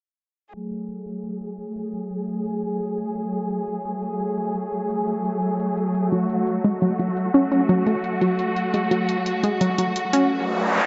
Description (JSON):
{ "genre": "dark technical drum and bass", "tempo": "172 BPM", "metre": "4/4", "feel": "straight", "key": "F# minor", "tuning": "A4 = 440 Hz", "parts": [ { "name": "warm symphonic string section", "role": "sustained chords", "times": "0.5-10.9 s", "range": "F#3 to G#4", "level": "-26 LUFS", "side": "equal", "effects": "none" }, { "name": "electronic hi-hat", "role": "drums", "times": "0.5-10.2 s", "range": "none", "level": "-38 LUFS", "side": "equal", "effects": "none" }, { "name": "warbly dusty pluck", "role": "arpeggios", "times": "6.1-10.2 s", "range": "F#3 to C#4", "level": "-23 LUFS", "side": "equal", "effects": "chorus, tape echo" }, { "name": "noise sweep", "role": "sound effects", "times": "10.4-10.9 s", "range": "none", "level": "-24 LUFS", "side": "equal", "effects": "none" } ], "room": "moderate plate reverb, RT60 1.6 s", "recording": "low-pass filter, nothing above 7.8 kHz", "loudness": "-24 LUFS", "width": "mono", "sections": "0.5-10.9 A section", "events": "filter sweep 0.5-10.9; noise sweep 10.4-10.9", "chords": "0.5 F#madd9", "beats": "| 0.54 0.89 1.24 1.59 | 1.94 2.28 2.63 2.98 | 3.33 3.68 4.03 4.38 | 4.73 5.08 5.42 5.77 | 6.12 6.47 6.82 7.17 | 7.52 7.87 8.21 8.56 | 8.91 9.26 9.61 9.96 | 10.31 10.66" }